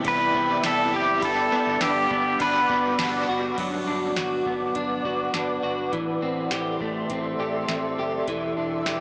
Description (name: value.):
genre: dream pop.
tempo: 102 BPM.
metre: 4/4.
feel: straight.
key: G major.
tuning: A4 = 440 Hz.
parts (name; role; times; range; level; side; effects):
overdriven electric guitar; accompaniment; 0.0-4.1 s; G3 to B4; -31 LUFS; equal; tremolo, ensemble chorus.
granular cloud pad; sustained chords; 0.0-9.0 s; A4 to D6; -29 LUFS; equal; built-in reverb.
electric guitar at the edge of break-up; arpeggios; 0.0-9.0 s; E3 to G4; -27 LUFS; equal; analog chorus, digital delay.
booming analog drum machine; drums; 0.0-9.0 s; crash cymbal, hi-hat, kick drum, ride cymbal, snare drum, tambourine; -32 LUFS; equal; none.
pedal steel guitar; melody; 0.1-3.3 s; G4 to B4; -22 LUFS; equal; digital delay.
vintage muted fingered electric bass; bass; 0.1-9.0 s; E1 to C2; -41 LUFS; equal; tube saturation.
synth chime; texture; 1.2-3.8 s; B5 to E6; -35 LUFS; equal; none.
room: moderate huge ambient reverb, RT60 4.4 s.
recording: blown-out, overdriven recording, overdrive, small speaker sound.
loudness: -22 LUFS.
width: side -36 dB against mid.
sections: 0.0-3.6 A section; 3.6-9.0 B section.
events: none.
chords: 0.0 Cmaj7; 1.2 Gmaj7; 5.9 Am7; 8.3 Em7.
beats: 0.05 0.64 | 1.23 1.81 2.40 2.99 | 3.58 4.17 4.75 5.34 | 5.93 6.52 7.11 7.70 | 8.28 8.87.